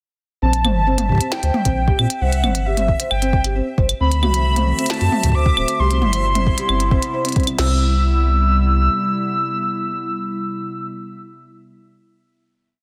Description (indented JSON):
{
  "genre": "IDM",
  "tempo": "134 BPM",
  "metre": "4/4",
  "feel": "straight",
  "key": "C lydian",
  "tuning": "A4 = 441 Hz",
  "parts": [
    { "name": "warbly nostalgic lead", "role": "melody", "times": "0.4-10.9 s", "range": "E5 to E6", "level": "-25 LUFS", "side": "equal", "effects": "chorus, tremolo, digital delay" },
    { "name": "felt-muted upright piano", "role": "arpeggios", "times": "0.4-7.8 s", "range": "C3 to C5", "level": "-28 LUFS", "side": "equal", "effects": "none" },
    { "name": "warm sub bass", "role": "bass", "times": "0.4-8.9 s", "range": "D1 to Bb2", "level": "-20 LUFS", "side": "equal", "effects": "none" },
    { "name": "backwards swelling texture", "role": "texture", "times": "0.8-7.6 s", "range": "E5", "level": "-35 LUFS", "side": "equal", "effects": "built-in reverb" },
    { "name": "glitchy drum kit", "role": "drums", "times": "0.5-7.6 s", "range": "claves, hi-hat, snare drum, toms", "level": "-25 LUFS", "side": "equal", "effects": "overdrive" },
    { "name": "glitchy drum kit", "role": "drums", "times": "1.1-7.7 s", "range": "crash cymbal, kick drum, snare drum", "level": "-22 LUFS", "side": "equal", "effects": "overdrive" },
    { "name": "warbly tape-like pad", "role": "sustained chords", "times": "4.2-10.9 s", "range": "C3 to F#4", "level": "-29 LUFS", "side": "equal", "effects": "chorus, built-in reverb, vintage 12-bit sampler grit" }
  ],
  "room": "light reverb",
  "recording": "dense, heavily limited modern master",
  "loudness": "-18 LUFS",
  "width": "mono",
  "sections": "0.4-7.6 chorus; 7.6-11.2 final chord",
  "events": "none",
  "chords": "0.4 Bb5; 2.2 C; 4.0 D7; 5.8 Cmaj7",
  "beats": "| 0.42 0.87 1.32 1.76 | 2.21 2.66 3.11 3.56 | 4.00 4.45 4.90 5.35 | 5.79 6.24 6.69 7.14 | 7.58 8.03 8.48 8.93 | 9.38 9.82 10.27 10.72"
}